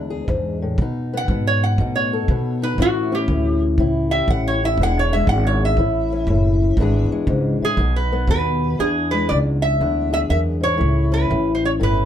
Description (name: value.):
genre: acoustic country blues, solo or duo.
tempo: 120 BPM.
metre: 4/4.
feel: swing 64% on 8ths.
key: E mixolydian.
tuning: A4 = 440 Hz.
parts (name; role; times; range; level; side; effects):
fingerpicked old ladder-braced acoustic guitar; accompaniment; 0.0-12.1 s; E2 to A4; -22 LUFS; left 3 dB; none.
upright bass; bass; 0.0-12.1 s; E1 to B2; -20 LUFS; equal; none.
kick drum; drums; 0.3-8.4 s; none; -25 LUFS; equal; none.
lap resonator guitar; melody; 1.2-12.1 s; F#4 to F#5; -22 LUFS; right 2 dB; none.
room: light reverb.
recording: dark, warm production.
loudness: -17 LUFS.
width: side -10 dB against mid.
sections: 0.0-8.8 A section; 8.8-12.1 B section.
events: resonator guitar played with a steel bar solo 0.0-8.8.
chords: 0.0 E7; 0.8 B7; 2.8 A7; 4.8 E7; 5.8 A; 6.8 E7; 7.8 B; 8.8 E7; 10.8 A7.